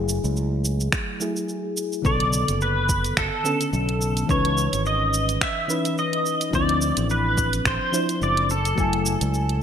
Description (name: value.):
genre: sunset chillout.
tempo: 107 BPM.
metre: 4/4.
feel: swing 56% on 16ths.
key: B dorian.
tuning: A4 = 440 Hz.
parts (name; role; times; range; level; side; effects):
mellow FM electric piano; accompaniment; 0.0-9.6 s; C#3 to G#5; -26 LUFS; moving between left 6 dB and right 3 dB; chorus, auto-pan, low-pass filter, digital delay.
fretless electric bass; bass; 0.0-9.6 s; F#1 to D2; -24 LUFS; right 1 dB; none.
smooth R&B drum kit; drums; 0.1-9.6 s; finger snaps, hi-hat, shaker; -27 LUFS; right 2 dB; gated reverb.
electronic kick drum; drums; 0.9-8.9 s; none; -27 LUFS; right 1 dB; overdrive.
pedal steel guitar; melody; 2.1-9.6 s; A4 to E5; -24 LUFS; equal; ensemble chorus, digital delay.
room: moderate plate reverb, RT60 2.2 s.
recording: bright 1980s-style digital production.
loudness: -20 LUFS.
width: side -8 dB against mid.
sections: 0.0-9.6 A section.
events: none.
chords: 0.0 F#m9; 2.0 Bm9; 4.3 C#m9; 6.5 Dm9; 8.5 F#m9.